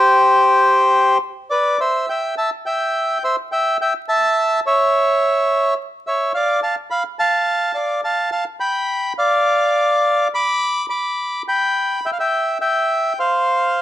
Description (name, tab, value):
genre	tango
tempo	106 BPM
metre	4/4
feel	rubato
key	C major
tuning	A4 = 440 Hz
part	bandoneon	solo	0.0-13.8 s	G4 to D6	-15 LUFS	equal	none
room	moderate large studio reverb, RT60 0.9 s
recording	dark, warm production, vinyl crackle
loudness	-16 LUFS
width	side -12 dB against mid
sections	0.0-1.8 A section; 1.8-13.8 B section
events	none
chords	0.0 C5; 1.8 C; 4.1 A; 6.3 Dm; 8.6 G7; 10.9 Em7; 13.2 N.C.